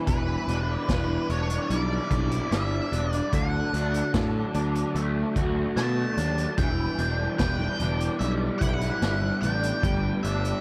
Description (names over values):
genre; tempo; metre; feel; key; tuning
psychedelic rock; 74 BPM; 4/4; straight; E minor; A4 = 439 Hz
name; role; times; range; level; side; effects
string machine, violas; sustained chords; 0.0-10.6 s; F#3 to G4; -37 LUFS; equal; ensemble chorus
raw garage guitar; riff; 0.0-10.6 s; D3 to B4; -33 LUFS; equal; overdrive, rotary speaker
octave-fuzz lead guitar; melody; 0.1-10.6 s; B4 to A5; -35 LUFS; equal; wah, distortion, tape echo
fuzz picked electric bass; bass; 0.1-10.5 s; E1 to B2; -30 LUFS; equal; overdrive
raw garage drum kit; drums; 0.1-10.6 s; hi-hat, kick drum, snare drum; -32 LUFS; equal; none
congas; percussion; 7.6-9.6 s; none; -39 LUFS; equal; none
room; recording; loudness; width
little or no reverb; dry, close 1970s-style studio recording; -26 LUFS; mono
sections
0.0-10.6 A section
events
none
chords
0.0 Em7; 3.3 D; 6.6 Em7; 9.8 Gadd9